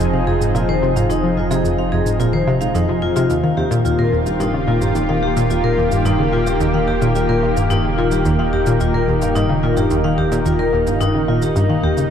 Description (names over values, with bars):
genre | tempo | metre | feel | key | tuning
ambient, sequencer-driven space music | 109 BPM | 4/4 | straight | unclear | A4 = 440 Hz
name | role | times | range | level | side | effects
lush unison pad | sustained chords | 0.0-12.1 s | Eb3 to Ab4 | -20 LUFS | right 1 dB | chorus
analog pluck | riff | 0.0-12.0 s | Eb2 to F3 | -18 LUFS | equal | chorus, analog delay
warm sub bass | bass | 0.0-12.1 s | Eb1 to F1 | -26 LUFS | equal | none
shaker and woodblock | percussion | 0.0-12.1 s | none | -37 LUFS | right 2 dB | analog delay
vibraphone with medium hard mallets | arpeggios | 0.1-11.9 s | Eb4 to F5 | -22 LUFS | left 3 dB | auto-pan, analog delay
room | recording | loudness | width
moderate huge ambient reverb, RT60 8.3 s | dark, warm production | -15 LUFS | side -8 dB against mid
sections
0.0-12.1 A section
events
none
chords
0.0 Fm7; 3.3 Ebadd9